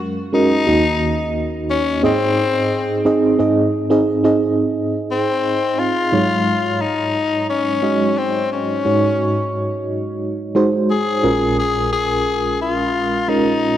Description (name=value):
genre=pop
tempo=88 BPM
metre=4/4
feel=straight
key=unclear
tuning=A4 = 442 Hz
part: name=FM electric piano with tremolo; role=accompaniment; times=0.0-13.8 s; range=Bb1 to Eb5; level=-17 LUFS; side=right 2 dB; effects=phaser, cassette tape
part: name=growling tenor saxophone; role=melody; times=0.3-13.8 s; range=C4 to Ab4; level=-19 LUFS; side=left 4 dB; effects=cassette tape
room=moderate lush hall reverb, RT60 2.8 s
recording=home recording on cassette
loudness=-15 LUFS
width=side -11 dB against mid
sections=0.0-3.4 A section; 3.4-6.1 B section; 6.1-13.8 C section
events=none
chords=0.0 Gbadd9; 0.7 Ebm; 2.0 Ab; 6.1 Ab7sus4; 11.2 Bbm7